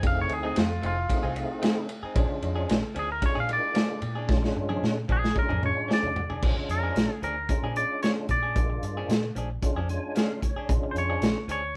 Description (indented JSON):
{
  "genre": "straight-eighth soul blues",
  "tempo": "113 BPM",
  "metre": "4/4",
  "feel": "straight",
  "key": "Bb mixolydian",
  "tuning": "A4 = 441 Hz",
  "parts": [
    { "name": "twangy electric guitar", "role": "melody", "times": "0.0-11.8 s", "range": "F4 to F5", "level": "-32 LUFS", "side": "equal", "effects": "none" },
    { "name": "tonewheel organ", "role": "accompaniment", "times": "0.0-11.4 s", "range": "Ab3 to Ab5", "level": "-36 LUFS", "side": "equal", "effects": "slow rotary speaker, overdrive, chorus vibrato" },
    { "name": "direct-recorded clean electric guitar", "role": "stabs", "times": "0.0-11.7 s", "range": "F3 to G#4", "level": "-40 LUFS", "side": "equal", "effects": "none" },
    { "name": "vintage muted fingered electric bass", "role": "bass", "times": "0.0-11.8 s", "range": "F1 to Bb2", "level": "-34 LUFS", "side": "equal", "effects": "none" },
    { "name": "crunchy breakbeat drum kit", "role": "drums", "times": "0.0-11.6 s", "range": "crash cymbal, hi-hat, kick drum, ride cymbal, snare drum, toms", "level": "-30 LUFS", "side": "equal", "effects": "none" }
  ],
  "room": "moderate studio ambience, RT60 0.5 s",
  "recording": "band playing live in one room",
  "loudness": "-27 LUFS",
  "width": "mono",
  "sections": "0.0-6.4 A section; 6.4-11.8 B section",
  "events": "clean electric guitar solo 0.0-6.4; drum fill 4.3-6.4; tonewheel organ fill 9.6-10.7",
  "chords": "0.0 F7#9; 2.2 Bb7#9"
}